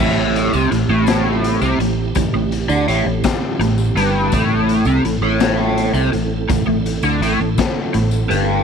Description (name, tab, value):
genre	psychedelic rock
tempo	55 BPM (dotted quarters)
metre	6/8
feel	straight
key	A minor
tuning	A4 = 440 Hz
part	tonewheel organ	sustained chords	0.0-8.6 s	A3 to A4	-25 LUFS	right 8 dB	overdrive, chorus vibrato, fast rotary speaker
part	overdriven electric guitar	riff	0.0-8.6 s	G2 to D3	-17 LUFS	equal	flanger
part	fingered electric bass	bass	0.0-8.6 s	G1 to D2	-21 LUFS	right 1 dB	none
part	raw garage drum kit	drums	0.0-8.5 s	crash cymbal, hi-hat, kick drum, snare drum	-22 LUFS	left 4 dB	none
part	tambourine	percussion	0.5-8.3 s	none	-39 LUFS	left 12 dB	none
room	light reverb, small room reverb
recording	1960s-style stereo with parts hard left and right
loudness	-14 LUFS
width	side -6 dB against mid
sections	0.0-8.6 A section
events	none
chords	0.0 Am7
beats	1.07 | 2.16 3.24 | 4.32 5.40 | 6.49 7.57